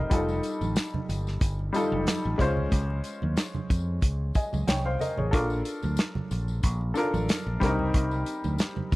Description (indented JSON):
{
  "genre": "lush 1970s-style soul",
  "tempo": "92 BPM",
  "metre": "4/4",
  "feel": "swing 54% on 16ths",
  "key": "unclear",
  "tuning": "A4 = 440 Hz",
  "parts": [
    { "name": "warm baby grand piano", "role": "accompaniment", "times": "0.0-9.0 s", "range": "G3 to Ab5", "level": "-30 LUFS", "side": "left 1 dB", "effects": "none" },
    { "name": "fingered electric bass", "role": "bass", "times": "0.0-9.0 s", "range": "F1 to F2", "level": "-29 LUFS", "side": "equal", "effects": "none" },
    { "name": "warm soul drum kit", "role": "drums", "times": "0.1-9.0 s", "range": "hi-hat, kick drum, snare drum", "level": "-25 LUFS", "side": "equal", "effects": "none" },
    { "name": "congas", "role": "percussion", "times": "0.1-8.9 s", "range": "none", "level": "-35 LUFS", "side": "right 3 dB", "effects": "none" },
    { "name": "tambourine", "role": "percussion", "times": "0.1-9.0 s", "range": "none", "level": "-46 LUFS", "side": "left 9 dB", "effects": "none" }
  ],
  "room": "little or no reverb",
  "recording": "dry, close 1970s-style studio recording",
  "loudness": "-25 LUFS",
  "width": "side -19 dB against mid",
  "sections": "0.0-9.0 A section",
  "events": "none",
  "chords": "0.1 F9; 2.4 Dbmaj7; 5.3 Bbmaj7; 7.6 Cm7",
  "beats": "| 0.11 0.76 1.42 2.07 | 2.72 3.37 4.03 4.68 | 5.33 5.99 6.64 7.29 | 7.94 8.60"
}